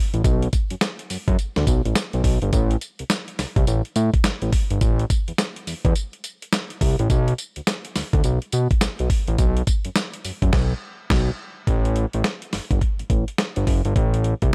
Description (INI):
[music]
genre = R&B, new jack swing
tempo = 105 BPM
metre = 4/4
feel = swing 62% on 16ths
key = A dorian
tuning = A4 = 443 Hz
[part]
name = fat analog bass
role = bass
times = 0.1-14.5 s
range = F#1 to B2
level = -23 LUFS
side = equal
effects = none
[part]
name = dusty soul sampler-style drum kit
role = drums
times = 0.1-14.5 s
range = crash cymbal, hi-hat, kick drum, snare drum, tambourine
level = -24 LUFS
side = equal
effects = none
[sound]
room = digital ambience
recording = none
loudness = -22 LUFS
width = mono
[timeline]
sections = 0.0-11.7 A section; 11.7-14.5 B section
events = band accent 10.5-11.7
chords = none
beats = | 0.24 0.81 1.39 1.96 | 2.53 3.10 3.67 4.24 | 4.81 5.39 5.96 6.53 | 7.10 7.67 8.24 8.81 | 9.39 9.96 10.53 11.10 | 11.67 12.24 12.81 13.39 | 13.96